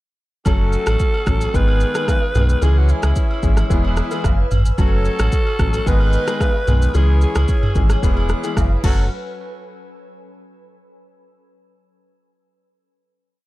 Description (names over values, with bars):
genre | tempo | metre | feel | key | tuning
afrobeats | 111 BPM | 4/4 | straight | F# dorian | A4 = 440 Hz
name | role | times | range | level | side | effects
raspy alto saxophone | melody | 0.5-9.1 s | E4 to B4 | -25 LUFS | right 1 dB | ping-pong delay
warm horn section | second line | 0.5-9.0 s | F#3 to D#5 | -30 LUFS | right 3 dB | none
clear baby grand piano | accompaniment | 0.5-9.0 s | D#3 to A4 | -25 LUFS | left 5 dB | none
glassy FM pad | sustained chords | 0.8-9.1 s | A4 to E6 | -32 LUFS | equal | ensemble chorus, built-in reverb
sub bass with octave | bass | 0.5-9.1 s | E1 to C#2 | -17 LUFS | equal | none
afro-pop drum kit | drums | 0.5-9.0 s | crash cymbal, kick drum, rim click, shaker, toms | -18 LUFS | equal | none
agogo bells and woodblock | percussion | 0.5-9.1 s | none | -33 LUFS | right 2 dB | none
room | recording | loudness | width
little or no reverb | dark, warm production | -15 LUFS | side -18 dB against mid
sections
0.5-9.1 chorus; 9.1-11.3 final hit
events
none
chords
0.5 F#m; 1.5 G#m; 2.6 C#m; 3.7 E; 4.8 F#m; 5.9 G#m; 6.9 C#m; 8.0 E; 8.8 F#m; 9.1 N.C.